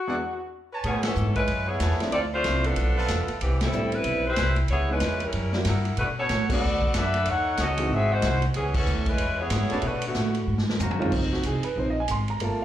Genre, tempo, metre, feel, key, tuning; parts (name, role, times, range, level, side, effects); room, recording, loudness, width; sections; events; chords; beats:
jazz, big band swing; 187 BPM; 4/4; swing 62% on 8ths; A major; A4 = 441 Hz
warm saxophone section; melody; 0.0-10.7 s; D3 to F#5; -26 LUFS; left 1 dB; slapback echo
clear concert grand piano; accompaniment; 0.1-12.6 s; E2 to C6; -29 LUFS; right 2 dB; slapback echo
clear trumpet section; stabs; 0.1-11.1 s; D4 to A#5; -35 LUFS; right 1 dB; slapback echo
upright bass; bass; 0.8-12.6 s; G1 to B2; -26 LUFS; equal
swinging big-band drum kit; drums; 0.8-12.5 s; crash cymbal, hi-hat, kick drum, ride cymbal, snare drum, toms; -31 LUFS; equal
small room ambience; live gig heard through the venue's PA, club reverb; -22 LUFS; side -12 dB against mid
0.8-11.1 A section; 11.1-12.6 B section
break 0.0-0.8; band accent 1.0, 3.6, 6.5, 8.7; drum fill 10.5-11.1; grand piano solo 11.1-12.6
0.0 E9; 0.8 Amaj9; 2.1 Dm7; 2.8 Dm69/B; 3.4 Cmaj7; 4.7 C#m7; 5.3 F#7b9; 6.0 Bm7; 7.3 D#m7b5; 7.9 G#7b13; 8.5 C#m7; 9.8 Bm7; 10.5 G#13; 11.1 Dbmaj9
0.20 0.52 | 0.84 1.16 1.48 1.80 | 2.12 2.44 2.77 3.09 | 3.41 3.73 4.05 4.37 | 4.69 5.01 5.33 5.65 | 5.98 6.30 6.62 6.94 | 7.26 7.58 7.90 8.23 | 8.55 8.87 9.19 9.51 | 9.83 10.16 10.48 10.80 | 11.12 11.44 11.77 12.09 | 12.41